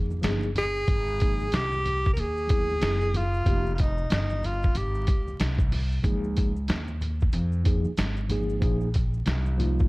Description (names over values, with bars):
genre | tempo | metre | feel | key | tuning
hip hop, jazz-hop | 93 BPM | 4/4 | swing 61% on 16ths | F minor | A4 = 436 Hz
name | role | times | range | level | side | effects
mellow tine electric piano | accompaniment | 0.0-9.9 s | E3 to Ab4 | -32 LUFS | equal | medium stereo tremolo
upright bass | bass | 0.0-9.9 s | F1 to F2 | -28 LUFS | equal | none
congas and maracas | percussion | 0.1-9.9 s | none | -38 LUFS | equal | none
trip hop sampler-style drum kit | drums | 0.2-9.9 s | hi-hat, kick drum, snare drum | -26 LUFS | equal | none
breathy tenor saxophone | melody | 0.6-5.4 s | Eb4 to Bb4 | -28 LUFS | equal | none
room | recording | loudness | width
studio reverb | dark, warm production, vinyl crackle | -23 LUFS | side -22 dB against mid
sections
0.0-9.9 A section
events
none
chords
0.0 Bb7(no3); 0.9 Ab69; 2.8 Gbsus2; 3.5 Fm9; 6.0 Dbadd9; 8.6 Bbsus2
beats
0.24 | 0.88 1.53 2.17 2.82 | 3.46 4.11 4.75 5.40 | 6.04 6.69 7.33 7.98 | 8.62 9.27